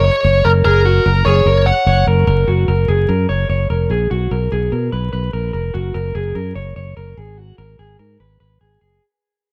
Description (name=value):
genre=jangly indie pop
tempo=147 BPM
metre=4/4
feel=straight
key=F# major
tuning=A4 = 439 Hz
part: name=bluesy overdriven lead guitar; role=melody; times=0.0-2.0 s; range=A#4 to F#5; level=-18 LUFS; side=equal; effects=distortion
part: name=electric guitar through a small old amp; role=arpeggios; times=0.0-9.0 s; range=F#4 to C#5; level=-22 LUFS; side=equal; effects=none
part: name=fingered electric bass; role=bass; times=0.0-9.0 s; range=E#1 to B2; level=-18 LUFS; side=equal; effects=none
room=light reverb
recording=dark, warm production, vinyl crackle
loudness=-16 LUFS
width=mono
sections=0.0-2.5 A section; 2.5-9.0 B section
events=fade-out 2.5-9.0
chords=0.0 F#; 4.1 B5; 5.7 F#; 7.2 G#madd9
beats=0.04 0.44 | 0.85 1.25 1.66 2.07 | 2.47 2.88 3.29 3.69 | 4.10 4.51 4.92 5.33 | 5.74 6.15 6.56 6.97 | 7.38 7.79 8.20 8.61